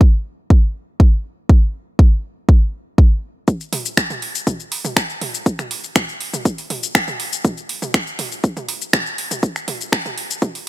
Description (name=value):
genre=techno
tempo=121 BPM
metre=4/4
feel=straight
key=none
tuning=none
part: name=electronic kick drum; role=drums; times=0.0-10.5 s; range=none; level=-12 LUFS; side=equal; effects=high-pass filter on kick
part: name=house drum kit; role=drums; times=3.5-10.6 s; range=finger snaps, hi-hat, shaker, toms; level=-21 LUFS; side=equal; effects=high-pass filter on perc, high-pass filter on toms, high-pass filter on hats, high-pass filter on snare
room=digital ambience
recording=high-pass filter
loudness=-16 LUFS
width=side -17 dB against mid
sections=0.0-3.5 A section; 3.5-10.7 B section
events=build-up 3.5-10.7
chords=none